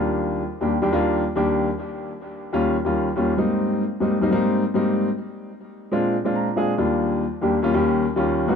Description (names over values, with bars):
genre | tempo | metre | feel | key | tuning
jazz | 141 BPM | 4/4 | straight | Eb major | A4 = 440 Hz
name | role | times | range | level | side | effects
warm grand piano | solo | 0.0-8.6 s | Eb2 to Bb5 | -20 LUFS | left 1 dB | tape echo
room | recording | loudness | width
moderate small room reverb, RT60 0.5 s | dark, warm production | -19 LUFS | side -6 dB against mid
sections
0.0-8.6 A section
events
grand piano fill 6.1-6.8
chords
0.0 Ebmaj7; 1.7 Eb7; 3.4 Abmaj9; 5.1 Bb7; 6.8 Ebmaj7; 7.6 Eb7